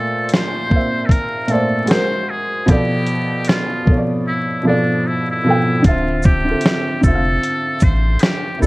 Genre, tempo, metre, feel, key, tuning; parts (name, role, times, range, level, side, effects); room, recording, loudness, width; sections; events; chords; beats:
lo-fi hip hop; 76 BPM; 4/4; swing 60% on 16ths; D minor; A4 = 438 Hz
trumpet with metal mute; melody; 0.0-8.7 s; D4 to B#4; -22 LUFS; equal; low-pass filter
felt-muted upright piano; accompaniment; 0.0-8.7 s; Bb2 to G5; -18 LUFS; equal; low-pass filter
dusty soul sampler-style drum kit; drums; 0.3-8.7 s; hi-hat, kick drum, shaker, snare drum; -16 LUFS; equal
soft dub sub bass; bass; 5.9-8.7 s; D1 to C2; -18 LUFS; equal
light reverb, digital ambience; vinyl crackle; -14 LUFS; side -22 dB against mid
0.0-5.8 A section; 5.8-8.7 B section
drums muted 4.3-5.8
0.0 Bbmaj9; 1.9 G#9; 2.7 G9/B; 5.8 Dm9
0.32 1.11 1.90 | 2.69 3.48 4.26 5.05 | 5.84 6.63 7.42 8.21